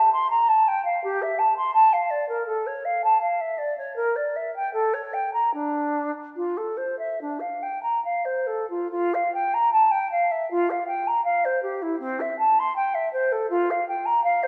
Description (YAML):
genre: classical, baroque-style fantasia for unaccompanied flute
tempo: 68-84 BPM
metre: 4/4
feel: rubato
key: D minor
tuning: A4 = 440 Hz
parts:
  - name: mellow hollow silver concert flute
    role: solo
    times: 0.0-14.5 s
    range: C4 to C6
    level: -24 LUFS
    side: equal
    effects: none
room: moderate scoring stage reverb, RT60 2.0 s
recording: none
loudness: -24 LUFS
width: mono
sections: 0.0-8.9 A section; 8.9-14.5 A section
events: none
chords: none